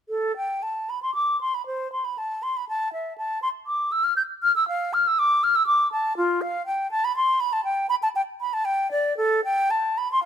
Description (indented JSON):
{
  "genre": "classical, baroque-style fantasia for unaccompanied flute",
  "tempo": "119 BPM",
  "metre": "3/4",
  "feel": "uneven beats, rubato",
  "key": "A minor",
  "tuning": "A4 = 440 Hz",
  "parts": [
    { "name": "mellow silver concert flute", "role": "solo", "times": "0.1-10.3 s", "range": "F4 to G6", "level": "-22 LUFS", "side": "equal", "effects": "none" }
  ],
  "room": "light reverb",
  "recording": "none",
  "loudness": "-22 LUFS",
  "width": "side -9 dB against mid",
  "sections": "0.1-10.3 A section",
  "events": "none",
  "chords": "none"
}